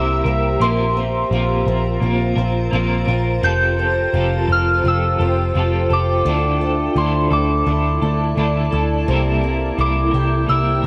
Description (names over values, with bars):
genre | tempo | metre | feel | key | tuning
dream pop | 85 BPM | 4/4 | straight | F major | A4 = 440 Hz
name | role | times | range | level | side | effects
soft synth bell | melody | 0.0-10.9 s | C6 to G6 | -24 LUFS | equal | chorus, tape echo
clean electric guitar | accompaniment | 0.0-10.9 s | C3 to Bb4 | -27 LUFS | equal | tremolo, analog chorus
granular cloud pad | sustained chords | 0.0-10.9 s | E4 to Bb5 | -27 LUFS | equal | built-in reverb
fingerpicked twelve-string acoustic guitar | arpeggios | 0.0-10.9 s | C3 to Bb4 | -27 LUFS | equal | lush chorus, tape echo
vintage muted picked electric bass | bass | 0.0-10.9 s | F1 to D2 | -22 LUFS | equal | none
room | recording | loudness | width
light reverb | worn, warbling old tape, cassette tape, warbly pitch drift | -18 LUFS | mono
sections
0.0-10.9 A section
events
none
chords
0.0 C7; 0.6 Bbsus2; 3.4 Fadd9; 6.3 Dsus2; 9.1 C7